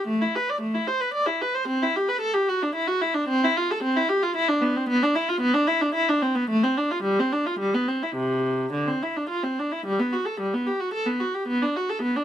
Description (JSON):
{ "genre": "classical, baroque-style suite movement for unaccompanied viola", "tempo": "104-115 BPM", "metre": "3/4", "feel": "rubato", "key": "C major from 3.3 s", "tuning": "A4 = 440 Hz", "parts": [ { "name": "warm viola", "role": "solo", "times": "0.0-12.2 s", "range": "C3 to D5", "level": "-22 LUFS", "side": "equal", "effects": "none" } ], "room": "little or no reverb", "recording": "close, detailed microphones", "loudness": "-22 LUFS", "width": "side -10 dB against mid", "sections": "0.0-9.9 A section; 9.9-12.2 A section", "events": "none", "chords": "none" }